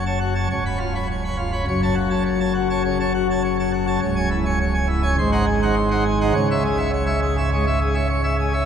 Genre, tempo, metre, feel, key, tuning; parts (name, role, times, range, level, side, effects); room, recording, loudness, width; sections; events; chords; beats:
classical, organ toccata; 103 BPM; 4/4; straight; A4 = 440 Hz
pipe organ, plenum; solo; 0.0-8.7 s; C#1 to B5; -18 LUFS; equal
wet cathedral reverb, RT60 6.6 s; heard from further back in the room; -18 LUFS; side -8 dB against mid
0.0-8.7 A section
0.5 C#7; 1.7 F#m; 4.0 C#m; 5.2 G#7; 6.3 C#m
0.50 1.08 | 1.67 2.25 2.84 3.43 | 4.01 4.60 5.18 5.77 | 6.35 6.93 7.52 8.10